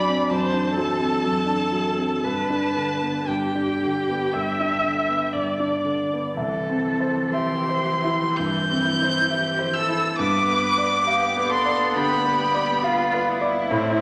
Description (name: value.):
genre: classical, slow romantic movement for piano quartet.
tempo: 55-69 BPM.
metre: 4/4.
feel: rubato.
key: C major.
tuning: A4 = 440 Hz.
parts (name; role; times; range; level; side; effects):
rich violin; melody; 0.0-13.2 s; G5 to G6; -26 LUFS; equal; none.
rich cello; second line; 0.0-14.0 s; D3 to B4; -33 LUFS; equal; none.
rich viola; accompaniment; 0.0-14.0 s; E3 to E5; -29 LUFS; equal; none.
warm grand piano; accompaniment; 0.0-14.0 s; C2 to F5; -27 LUFS; equal; none.
room: wet recital hall reverb, RT60 1.5 s.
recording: none.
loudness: -23 LUFS.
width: mono.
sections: 0.0-6.4 A section; 6.4-14.0 B section.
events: none.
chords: 0.0 D7/F#; 2.2 G; 6.4 C; 10.2 G7.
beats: 0.32 1.25 | 2.25 3.29 4.34 5.34 | 6.37 7.34 8.38 9.31 | 10.19 11.07 11.96 12.84 | 13.71.